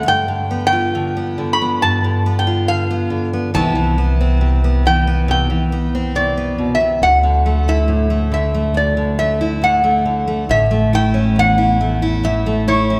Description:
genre	acoustic folk duo or small band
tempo	69 BPM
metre	4/4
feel	straight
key	unclear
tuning	A4 = 435 Hz
part	metal-body resonator slide guitar	melody	0.0-13.0 s	C#5 to B5	-20 LUFS	equal	none
part	fingerpicked steel-string acoustic guitar	accompaniment	0.0-13.0 s	D2 to F4	-21 LUFS	equal	none
part	upright bass	bass	3.5-13.0 s	A1 to D2	-21 LUFS	equal	none
room	wet concert hall reverb, RT60 2.3 s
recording	recorded in a church or concert hall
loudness	-16 LUFS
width	mono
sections	0.0-10.5 A section; 10.5-13.0 B section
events	none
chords	0.1 G7; 3.5 Cmaj7; 7.0 Dadd9; 10.5 A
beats	| 0.07 0.94 1.81 2.68 | 3.54 4.41 5.28 6.15 | 7.02 7.89 8.76 9.62 | 10.49 11.36 12.23

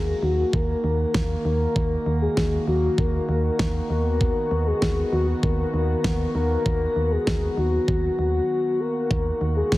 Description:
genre	synth-pop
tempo	98 BPM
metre	4/4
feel	straight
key	Eb minor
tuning	A4 = 439 Hz
part	soft octave-layered synth lead	melody	0.0-9.8 s	Gb4 to Bb4	-25 LUFS	left 2 dB	chorus, tremolo, slapback echo, shimmer reverb
part	warm analog pad	sustained chords	0.0-9.8 s	Eb3 to Gb4	-29 LUFS	right 1 dB	chorus, shimmer reverb
part	solid FM bass	bass	0.0-9.8 s	Eb2	-24 LUFS	equal	none
part	pop drum kit	drums	0.5-9.8 s	kick drum, snare drum	-26 LUFS	equal	none
room	light reverb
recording	heavily compressed radio sound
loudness	-20 LUFS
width	side -17 dB against mid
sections	0.0-9.8 A section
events	silent gap 8.5-9.1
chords	0.0 Ebm; 3.9 B/D#; 9.1 Ebm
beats	0.53 1.15 | 1.76 2.37 2.98 3.60 | 4.21 4.82 5.43 6.04 | 6.66 7.27 7.88 8.49 | 9.11 9.72

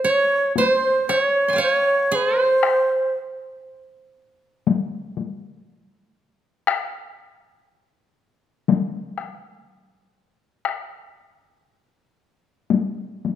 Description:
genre	japanese traditional, Japanese chamber music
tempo	59 BPM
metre	4/4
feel	rubato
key	C miyako bushi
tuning	A4 = 440 Hz
part	mellow shakuhachi	melody	0.0-3.1 s	C5 to Db5	-18 LUFS	right 1 dB	none
part	koto	second line	0.0-3.8 s	C5 to C6	-23 LUFS	right 4 dB	none
part	taiko ensemble	percussion	0.6-13.4 s	none	-22 LUFS	left 6 dB	none
room	moderate recital hall reverb, RT60 1.5 s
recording	none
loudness	-19 LUFS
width	side -10 dB against mid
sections	0.0-13.4 A section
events	none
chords	none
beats	0.56 1.59 | 2.61 3.63 4.65 5.66 | 6.67 7.68 8.68 9.67 | 10.66 11.67 12.71

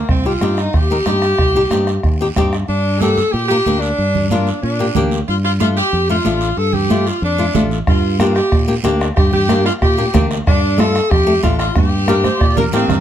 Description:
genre	latin, cumbia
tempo	185 BPM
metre	4/4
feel	straight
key	G minor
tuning	A4 = 437 Hz
part	dark saxophone section	melody	0.0-13.0 s	C4 to A4	-18 LUFS	equal	none
part	fingered electric bass	bass	0.0-13.0 s	A1 to Bb2	-19 LUFS	equal	none
part	bombo	percussion	0.1-2.7, 7.9-13.0 s	none	-18 LUFS	right 1 dB	none
part	guiro	percussion	0.1-13.0 s	none	-32 LUFS	right 6 dB	none
part	flamenco guitar	accompaniment	0.3-13.0 s	A3 to Bb4	-19 LUFS	left 3 dB	none
part	congas	percussion	0.4-13.0 s	none	-23 LUFS	right 6 dB	none
part	accordion	second line	12.1-13.0 s	Bb4 to D5	-22 LUFS	right 4 dB	light tremolo tuning
room	light reverb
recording	none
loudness	-13 LUFS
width	side -10 dB against mid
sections	0.0-2.7 A section; 2.7-13.0 B section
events	drum fill 11.8-13.0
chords	0.1 Cm; 2.7 Gm; 5.3 Dm; 7.9 Gm; 10.5 Dm/G; 11.8 Gm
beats	| 0.09 0.41 0.74 1.06 | 1.39 1.72 2.04 2.37 | 2.69 3.01 3.34 3.66 | 3.99 4.31 4.63 4.96 | 5.28 5.61 5.93 6.25 | 6.58 6.90 7.23 7.55 | 7.87 8.20 8.52 8.85 | 9.17 9.49 9.82 10.14 | 10.47 10.79 11.11 11.44 | 11.76 12.09 12.41 12.73

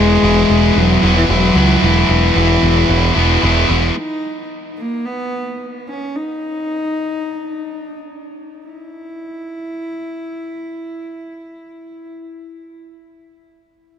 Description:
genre	post-rock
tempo	89-113 BPM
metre	4/4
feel	straight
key	E major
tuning	A4 = 441 Hz
part	dark cello	melody	0.0-12.1 s	E3 to E4	-19 LUFS	left 1 dB	digital delay
part	distorted electric guitar	riff	0.0-4.0 s	E3 to E4	-15 LUFS	equal	overdrive
part	growling picked electric bass	bass	0.0-3.9 s	E1 to C#2	-15 LUFS	equal	overdrive
room	moderate huge ambient reverb, RT60 5.2 s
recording	none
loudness	-13 LUFS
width	side -8 dB against mid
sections	0.0-4.0 A section; 4.0-8.7 B section; 8.7-14.0 C section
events	slowing down 4.0-8.7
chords	0.0 E; 4.0 N.C.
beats	0.23 0.76 1.29 | 1.82 2.36 2.89 3.42 | 3.96 4.50 5.04 5.60 | 6.17 6.75 7.36 7.99 | 8.65 9.32 10.00 10.68 | 11.35 12.03

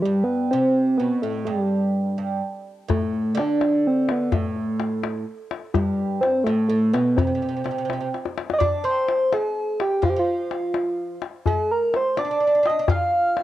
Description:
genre	Persian modal ensemble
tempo	84 BPM (dotted quarters)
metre	6/8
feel	straight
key	unclear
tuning	A4 = 440 Hz
part	soft struck synth lead	melody	0.0-13.4 s	G3 to F5	-21 LUFS	equal	chorus, cassette tape
part	oud	second line	0.0-13.4 s	G2 to F4	-30 LUFS	right 5 dB	cassette tape
part	tombak	percussion	2.9-13.4 s	none	-25 LUFS	left 4 dB	none
room	moderate spring reverb, RT60 1.6 s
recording	home recording on cassette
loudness	-20 LUFS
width	side -14 dB against mid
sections	0.0-8.6 A section; 8.6-13.4 B section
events	drum fill 8.1-8.6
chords	none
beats	| 0.05 0.77 | 1.48 2.19 | 2.90 3.62 | 4.33 5.04 | 5.75 6.47 | 7.18 7.89 | 8.61 9.32 | 10.03 10.75 | 11.46 12.18 | 12.89

